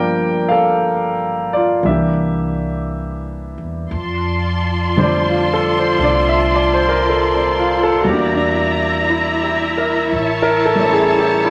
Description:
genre	jazz ballad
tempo	58 BPM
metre	4/4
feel	swing 67% on 8ths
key	F major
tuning	A4 = 440 Hz
part	warm concert grand piano	accompaniment	0.0-11.5 s	D3 to G5	-18 LUFS	equal	none
part	upright bass	bass	0.0-11.5 s	G1 to F2	-27 LUFS	equal	none
part	warm studio string section	sustained chords	3.9-11.5 s	E4 to C6	-20 LUFS	equal	none
room	wet club reverb, RT60 0.6 s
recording	none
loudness	-16 LUFS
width	mono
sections	0.0-3.9 A section; 3.9-11.5 B section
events	none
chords	0.0 Gm7; 1.8 C7; 3.9 F6; 8.1 Em7b5; 10.1 A7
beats	0.80 1.84 2.89 | 3.94 4.97 6.01 7.04 | 8.07 9.10 10.12 11.15

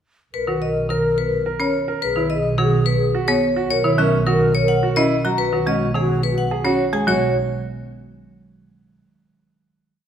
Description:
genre	classical, minimalist pattern music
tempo	107 BPM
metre	3/4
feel	straight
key	B major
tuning	A4 = 440 Hz
part	vibraphone with hard mallets	melody	0.3-7.3 s	G#4 to A#5	-22 LUFS	left 4 dB	none
part	mellow hollow alto flute	second line	0.3-6.8 s	F#4 to A#4	-24 LUFS	left 1 dB	none
part	warm symphonic double bass section	bass	0.3-7.3 s	B1	-24 LUFS	right 2 dB	none
part	folk marimba with hard mallets	accompaniment	0.5-7.3 s	D#3 to C#4	-23 LUFS	equal	none
part	bright concert grand piano	arpeggios	0.5-7.3 s	C#4 to A#4	-26 LUFS	right 6 dB	none
room	moderate recital hall reverb, RT60 1.6 s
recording	none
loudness	-17 LUFS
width	side -9 dB against mid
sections	0.3-7.1 A section; 7.1-8.8 final chord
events	none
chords	0.3 Bmaj7; 2.0 Eadd9/B (rootless); 3.7 F#7/B; 5.4 G#m7/B; 7.1 B5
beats	| 0.34 0.90 1.46 | 2.02 2.58 3.14 | 3.70 4.26 4.83 | 5.39 5.95 6.51 | 7.07

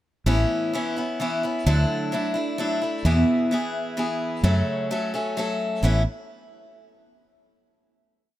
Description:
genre	folk rock and heartland rock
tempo	130 BPM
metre	3/4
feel	straight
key	A major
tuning	A4 = 440 Hz
part	picked steel-string acoustic guitar	accompaniment	0.3-6.0 s	E2 to A4	-23 LUFS	equal	none
part	fingered electric bass	bass	0.3-6.0 s	A1 to F#2	-19 LUFS	equal	none
room	light reverb, small room ambience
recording	none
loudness	-21 LUFS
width	side -14 dB against mid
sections	0.3-5.8 verse; 5.8-7.2 final chord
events	none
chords	0.3 Aadd9; 1.7 Dadd9; 3.1 E; 4.4 F#m; 5.8 Aadd9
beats	| 0.27 0.74 1.20 | 1.67 2.13 2.59 | 3.06 3.52 3.98 | 4.44 4.90 5.36 | 5.83

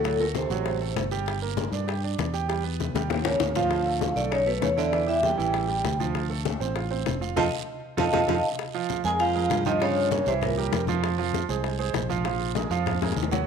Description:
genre	Afro-Cuban jazz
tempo	197 BPM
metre	4/4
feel	straight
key	D minor, Bb minor from 8.6 s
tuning	A4 = 442 Hz
part	vibraphone with medium hard mallets	melody	0.0-1.1, 3.3-10.8 s	A4 to A5	-26 LUFS	left 1 dB	none
part	breathy baritone saxophone	second line	0.0-1.1, 3.3-10.8 s	A2 to Ab3	-31 LUFS	right 10 dB	none
part	clear concert grand piano	accompaniment	0.0-13.5 s	E3 to G5	-30 LUFS	right 11 dB	none
part	fingered electric bass	bass	0.0-13.5 s	F1 to G2	-30 LUFS	equal	none
part	congas	percussion	0.0-13.5 s	none	-34 LUFS	left 9 dB	none
part	guiro	percussion	0.0-13.5 s	none	-41 LUFS	right 12 dB	none
part	bongos	percussion	0.1-13.4 s	none	-32 LUFS	left 13 dB	none
room	moderate echo chamber reverb, RT60 1.6 s, studio ambience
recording	1960s-style stereo with parts hard left and right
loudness	-23 LUFS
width	side -6 dB against mid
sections	0.0-8.6 A section; 8.6-13.5 B section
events	drum fill 2.8-3.7, 7.7-8.6, 13.0-13.5; band accent 7.4-8.6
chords	0.0 D7; 1.3 Gm; 2.5 Em; 3.1 Eb9; 3.7 Dm; 4.3 B7; 4.9 A7sus4; 5.5 A5; 6.2 Dm7; 7.4 F7; 8.6 Bb5; 9.8 Gm7b5; 10.4 C7; 11.0 Fm; 12.2 Bb5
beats	| 0.04 0.35 0.66 0.96 | 1.27 1.57 1.88 2.18 | 2.49 2.79 3.10 3.40 | 3.71 4.01 4.32 4.63 | 4.93 5.24 5.54 5.85 | 6.15 6.46 6.76 7.07 | 7.37 7.68 7.98 8.29 | 8.59 8.90 9.20 9.51 | 9.81 10.12 10.42 10.72 | 11.03 11.34 11.64 11.95 | 12.25 12.55 12.86 13.16

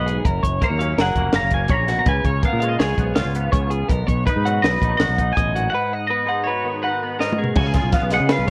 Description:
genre	math rock and midwest emo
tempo	164 BPM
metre	5/4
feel	straight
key	unclear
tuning	A4 = 438 Hz
part	twangy electric guitar	melody	0.0-8.5 s	A#4 to A#5	-26 LUFS	equal	spring reverb
part	direct-recorded clean electric guitar	accompaniment	0.0-8.5 s	F#2 to B4	-30 LUFS	equal	ensemble chorus
part	twelve-string electric guitar	arpeggios	0.0-8.5 s	F#4 to G#5	-27 LUFS	equal	none
part	growling fingered electric bass	bass	0.0-8.5 s	E#1 to C#3	-25 LUFS	equal	overdrive
part	compact cocktail drum kit	drums	0.1-8.5 s	crash cymbal, hi-hat, kick drum, snare drum, toms	-24 LUFS	equal	none
room	light reverb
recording	worn, warbling old tape, cassette tape, warbly pitch drift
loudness	-20 LUFS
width	mono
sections	0.0-7.6 A section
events	break 5.7-7.6; drum fill 7.2-7.6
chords	0.2 F#maj9; 2.1 C#7; 3.9 Bmaj7; 5.7 G#m7; 7.6 C#9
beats	| 0.25 0.61 0.98 1.34 1.71 | 2.07 2.44 2.80 3.17 3.54 | 3.90 4.27 4.64 5.00 5.37 | 5.74 6.11 6.47 6.84 7.21 | 7.57 7.94 8.31

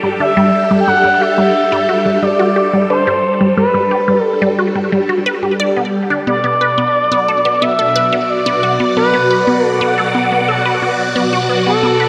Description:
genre	ambient, sequencer-driven space music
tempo	89 BPM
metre	4/4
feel	straight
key	unclear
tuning	A4 = 441 Hz
part	phased string machine	sustained chords	0.0-12.1 s	B2 to F#5	-19 LUFS	equal	ensemble chorus, phaser
part	resonant blip pluck	riff	0.0-12.1 s	G3 to D5	-19 LUFS	equal	phaser, tape echo
part	expressive synth lead	melody	0.2-12.1 s	A4 to G5	-17 LUFS	equal	chorus, tape echo
room	wet plate reverb, RT60 2.5 s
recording	none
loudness	-14 LUFS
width	mono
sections	0.0-12.1 A section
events	filter sweep on synth arpeggio sound 0.0-12.1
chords	0.0 Gsus2; 6.3 Bm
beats	0.20 | 0.88 1.55 2.23 2.90 | 3.58 4.25 4.92 5.60 | 6.27 6.95 7.62 8.29 | 8.97 9.64 10.32 10.99 | 11.67

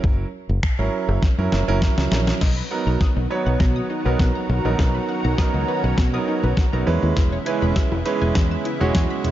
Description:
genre	dance-pop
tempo	101 BPM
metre	4/4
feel	straight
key	B major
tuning	A4 = 440 Hz
part	clear concert grand piano	accompaniment	0.0-9.3 s	F#3 to C#5	-24 LUFS	right 5 dB	sidechain pumping
part	fingered electric bass	bass	0.0-9.3 s	E1 to B2	-22 LUFS	equal	sidechain pumping
part	crisp 8-bit digital drum machine	drums	0.0-9.3 s	crash cymbal, finger snaps, hi-hat, kick drum, snare drum	-21 LUFS	equal	none
part	lush unison pad	sustained chords	2.4-9.3 s	C#3 to A#4	-28 LUFS	equal	chorus, sidechain pumping
part	analog pluck	arpeggios	2.4-9.2 s	D#4 to E6	-32 LUFS	left 4 dB	chorus, sidechain pumping, ping-pong delay
room	digital ambience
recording	dark, warm production, nothing above 7.6 kHz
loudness	-18 LUFS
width	side -13 dB against mid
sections	0.0-2.4 A section; 2.4-9.3 B section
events	drum fill 1.2-2.4, 2.4-9.3; build-up 2.4-9.3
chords	0.0 F#7; 2.4 Bmaj7; 6.9 E6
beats	| 0.04 0.63 1.23 1.82 | 2.41 3.01 3.60 4.20 | 4.79 5.38 5.98 6.57 | 7.17 7.76 8.36 8.95

